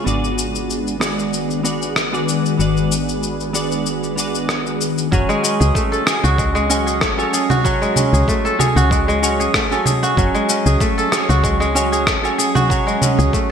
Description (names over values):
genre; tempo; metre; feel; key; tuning
organic downtempo; 95 BPM; 4/4; swing 54% on 16ths; F# minor; A4 = 439 Hz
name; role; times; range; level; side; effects
clean electric guitar; accompaniment; 0.0-13.5 s; B3 to G#5; -22 LUFS; right 3 dB; analog chorus, sidechain pumping, digital delay
ethereal airy pad; sustained chords; 0.0-13.5 s; D#3 to G#5; -25 LUFS; left 2 dB; ensemble chorus, built-in reverb, phaser, sidechain pumping
woody FM bass; bass; 0.0-13.3 s; F#1 to C#2; -19 LUFS; equal; sidechain pumping
electronic shaker, rim click and congas; drums; 0.1-13.5 s; none; -21 LUFS; left 1 dB; gated reverb
kora; arpeggios; 5.1-13.5 s; F#3 to A4; -18 LUFS; equal; digital delay
electronic kick drum; drums; 5.1-13.5 s; none; -22 LUFS; equal; none
room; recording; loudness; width
moderate plate reverb, RT60 2.1 s; bright 1980s-style digital production; -15 LUFS; side -7 dB against mid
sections
0.0-5.1 A section; 5.1-13.5 B section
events
none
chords
0.1 G#m7b5; 5.1 F#madd9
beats
| 0.07 0.70 1.33 1.96 | 2.59 3.23 3.86 4.49 | 5.12 5.75 6.38 7.01 | 7.65 8.28 8.91 9.54 | 10.17 10.80 11.44 12.07 | 12.70 13.33